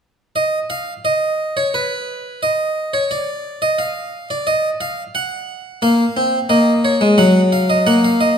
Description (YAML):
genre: classical, baroque-style 3-part fugue for harpsichord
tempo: 88 BPM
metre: 4/4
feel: straight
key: Eb minor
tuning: A4 = 439 Hz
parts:
  - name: harpsichord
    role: solo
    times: 0.4-8.4 s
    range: Gb3 to Gb5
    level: -15 LUFS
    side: equal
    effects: none
room: wet recital hall reverb, RT60 1.7 s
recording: none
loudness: -15 LUFS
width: side -7 dB against mid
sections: 0.4-8.4 A section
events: none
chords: 0.4 N.C.; 5.8 Bbm; 7.2 Ebm/Gb